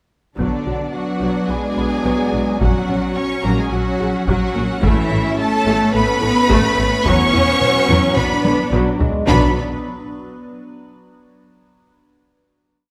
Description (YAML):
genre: cinematic, hybrid orchestral and electronic film score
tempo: 108 BPM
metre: 4/4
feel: straight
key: B dorian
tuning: A4 = 438 Hz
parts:
  - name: rich symphonic violin section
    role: melody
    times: 0.4-9.6 s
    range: D5 to C#6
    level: -26 LUFS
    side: equal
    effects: none
  - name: rich symphonic violin section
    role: second line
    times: 0.4-9.6 s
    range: D4 to C#5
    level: -26 LUFS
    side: equal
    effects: none
  - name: rich symphonic viola section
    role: accompaniment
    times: 0.4-9.6 s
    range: C#3 to D4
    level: -26 LUFS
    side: equal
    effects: none
  - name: evolving wavetable pad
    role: sustained chords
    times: 1.3-9.6 s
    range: F#3 to D5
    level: -29 LUFS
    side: equal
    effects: none
  - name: mellow French horn section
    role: sustained chords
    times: 0.4-9.5 s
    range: F#3 to D4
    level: -27 LUFS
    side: equal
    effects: none
  - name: thumb-piano-like synth pluck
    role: arpeggios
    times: 0.4-9.2 s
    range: E3 to B4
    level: -28 LUFS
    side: equal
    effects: none
  - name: rich symphonic cello section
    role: bass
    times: 0.4-9.6 s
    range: D3 to C#4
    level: -25 LUFS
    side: equal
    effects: none
  - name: rich symphonic double bass section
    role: bass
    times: 0.4-9.6 s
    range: A1 to E2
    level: -25 LUFS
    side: equal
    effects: none
  - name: taiko ensemble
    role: drums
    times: 0.4-9.4 s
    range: none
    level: -24 LUFS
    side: equal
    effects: none
room: wet scoring stage reverb, RT60 1.5 s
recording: none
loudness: -17 LUFS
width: mono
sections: 0.4-9.3 theme; 9.3-11.5 final chord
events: drum fill 8.4-9.3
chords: 0.4 Bm; 2.6 F#/A#; 4.8 Aadd9; 7.1 Esus2; 8.2 Bm